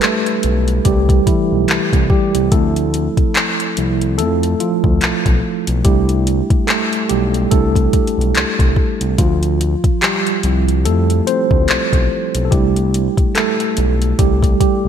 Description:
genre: contemporary R&B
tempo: 72 BPM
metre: 4/4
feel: swing 58% on 16ths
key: C major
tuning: A4 = 440 Hz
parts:
  - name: mellow tine electric piano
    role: accompaniment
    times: 0.0-14.9 s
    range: E3 to C5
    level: -17 LUFS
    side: right 2 dB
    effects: slow stereo tremolo
  - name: smooth R&B drum kit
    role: drums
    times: 0.0-14.8 s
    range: handclaps, hi-hat, kick drum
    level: -16 LUFS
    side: left 1 dB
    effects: gated reverb
  - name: smooth synth bass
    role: bass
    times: 0.4-14.9 s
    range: B1 to F2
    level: -18 LUFS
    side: left 1 dB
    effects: none
room: light reverb, digital ambience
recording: bright 1980s-style digital production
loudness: -13 LUFS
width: side -8 dB against mid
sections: 0.0-14.9 A section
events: tine electric piano solo 0.0-14.9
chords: 0.0 C69; 2.5 Dm7; 5.9 C69; 9.2 Dm7; 12.5 C69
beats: 0.02 0.85 1.69 | 2.52 3.35 4.19 5.02 | 5.85 6.69 7.52 8.35 | 9.19 10.02 10.85 11.69 | 12.52 13.35 14.19

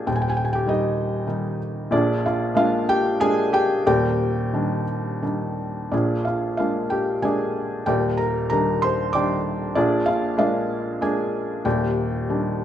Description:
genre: classical, lyrical solo piano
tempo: 84-99 BPM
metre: 3/4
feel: rubato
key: unclear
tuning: A4 = 437 Hz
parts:
  - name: felt-muted upright piano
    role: solo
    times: 0.0-12.6 s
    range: Eb1 to D6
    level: -20 LUFS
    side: equal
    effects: none
room: moderate recital hall reverb, RT60 1.3 s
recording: minimal, uncompressed stereo recording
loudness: -20 LUFS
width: side -10 dB against mid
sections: 0.0-12.6 A section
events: none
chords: 0.1 Eb; 1.9 Bb7; 3.9 Ebmaj7; 5.9 Bb7; 7.9 Ebmaj7; 9.8 Bb7; 11.7 Ebmaj7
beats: | 0.07 0.68 1.30 | 1.92 2.56 3.21 | 3.86 4.53 5.23 | 5.92 6.59 7.24 | 7.87 8.51 9.14 | 9.76 10.38 11.01 | 11.65 12.30

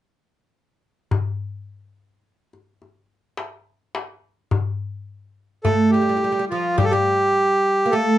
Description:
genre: Arabic maqam ensemble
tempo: 106 BPM (eighths)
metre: 10/8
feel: straight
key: unclear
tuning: A4 = 440 Hz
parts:
  - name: darbuka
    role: percussion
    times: 1.1-7.0 s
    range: none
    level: -24 LUFS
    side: left 4 dB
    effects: none
  - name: accordion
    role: melody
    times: 5.6-8.2 s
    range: F4 to A4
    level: -18 LUFS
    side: equal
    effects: none
  - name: oud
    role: second line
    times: 5.6-8.2 s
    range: F3 to Bb3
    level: -21 LUFS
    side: right 2 dB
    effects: none
room: moderate studio ambience, RT60 0.5 s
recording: nothing above 11.0 kHz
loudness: -18 LUFS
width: side -13 dB against mid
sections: 1.1-6.8 A section; 6.8-8.2 B section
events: none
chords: none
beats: | 1.11 1.68 2.24 2.81 3.38 3.95 4.52 5.08 5.65 6.22 | 6.79 7.36 7.92

